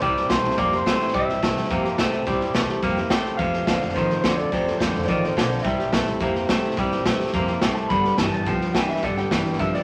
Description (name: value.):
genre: rockabilly.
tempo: 213 BPM.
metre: 4/4.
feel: straight.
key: C major.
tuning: A4 = 437 Hz.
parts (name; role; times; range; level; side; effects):
electric guitar through a small old amp; melody; 0.0-9.8 s; C5 to B5; -28 LUFS; equal; warbly pitch drift.
picked steel-string acoustic guitar; accompaniment; 0.0-9.8 s; G2 to A4; -30 LUFS; equal; none.
twangy electric guitar; riff; 0.0-9.8 s; F2 to Bb3; -28 LUFS; equal; none.
upright bass; bass; 0.0-9.8 s; F1 to F2; -33 LUFS; equal; none.
raw garage drum kit; drums; 0.0-9.8 s; hi-hat, kick drum, snare drum; -28 LUFS; equal; none.
room: moderate studio reverb, RT60 0.5 s.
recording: vinyl crackle.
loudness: -22 LUFS.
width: mono.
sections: 0.0-9.8 A section.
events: none.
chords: 0.0 C; 3.4 F; 5.7 C; 7.9 G.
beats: | 0.02 0.30 0.58 0.86 | 1.14 1.43 1.71 1.99 | 2.27 2.55 2.83 3.11 | 3.40 3.68 3.96 4.24 | 4.52 4.80 5.09 5.37 | 5.65 5.93 6.21 6.50 | 6.78 7.06 7.34 7.63 | 7.91 8.19 8.47 8.76 | 9.04 9.32 9.60.